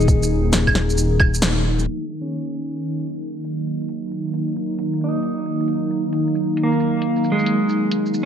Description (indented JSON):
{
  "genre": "future garage",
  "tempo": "134 BPM",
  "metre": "4/4",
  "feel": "swing 66% on 16ths",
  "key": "Eb minor",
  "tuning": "A4 = 440 Hz",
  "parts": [
    { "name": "clean electric guitar", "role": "accompaniment", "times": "0.0-8.2 s", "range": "Ab3 to Eb4", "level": "-24 LUFS", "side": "right 2 dB", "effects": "sidechain pumping, analog delay" },
    { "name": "warbly tape-like pad", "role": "sustained chords", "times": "0.0-8.3 s", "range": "Eb3 to Ab4", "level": "-21 LUFS", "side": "equal", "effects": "chorus, built-in reverb, sidechain pumping" },
    { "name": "dark detuned saw bass", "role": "bass", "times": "0.0-1.9 s", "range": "Eb1", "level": "-20 LUFS", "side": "equal", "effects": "none" },
    { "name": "garage drum kit", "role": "drums", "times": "0.0-8.3 s", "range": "claves, hi-hat, shaker, snare drum", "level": "-22 LUFS", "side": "right 1 dB", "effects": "low-pass filter on perc, low-pass filter on snare, low-pass filter on hats" },
    { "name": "electronic kick drum", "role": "drums", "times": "0.1-1.3 s", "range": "none", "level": "-17 LUFS", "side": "equal", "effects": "none" }
  ],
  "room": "wet concert hall reverb, RT60 1.9 s",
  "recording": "low-pass filter",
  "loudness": "-18 LUFS",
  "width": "side -8 dB against mid",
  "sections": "0.0-1.9 A section; 1.9-8.3 B section",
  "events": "kick drops out 1.4-1.9; band accent 1.4; filter sweep 1.9-8.3",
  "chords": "0.0 Eb5; 1.9 Ebm7"
}